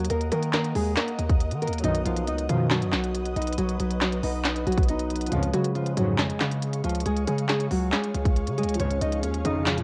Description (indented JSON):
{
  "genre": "hip hop, trap",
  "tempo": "138 BPM",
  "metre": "4/4",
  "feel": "half-time",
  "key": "unclear",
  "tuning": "A4 = 440 Hz",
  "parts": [
    { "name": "nylon-string guitar", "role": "melody", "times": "0.0-9.8 s", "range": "F3 to D#5", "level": "-30 LUFS", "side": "equal", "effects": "none" },
    { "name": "warm concert grand piano", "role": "accompaniment", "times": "0.0-9.8 s", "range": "F3 to Eb4", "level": "-39 LUFS", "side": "equal", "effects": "none" },
    { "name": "granular cloud pad", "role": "sustained chords", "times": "0.0-9.8 s", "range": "Ab4 to Eb6", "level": "-39 LUFS", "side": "equal", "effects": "built-in reverb, cassette tape" },
    { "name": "distorted 808-style bass", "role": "bass", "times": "0.0-9.8 s", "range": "B1 to Eb3", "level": "-31 LUFS", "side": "equal", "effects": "distortion" },
    { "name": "trap drum kit", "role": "drums", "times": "0.0-9.8 s", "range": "handclaps, hi-hat, kick drum, snare drum", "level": "-30 LUFS", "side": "equal", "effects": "cassette tape" },
    { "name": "analog synth brass", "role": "stabs", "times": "1.8-9.8 s", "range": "Ab1 to D#3", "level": "-32 LUFS", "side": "equal", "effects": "chorus, cassette tape" }
  ],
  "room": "light reverb",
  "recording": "home recording on cassette",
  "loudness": "-26 LUFS",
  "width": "mono",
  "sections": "0.0-9.8 A section",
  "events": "none",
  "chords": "0.0 Ebm; 1.8 B; 5.3 Db"
}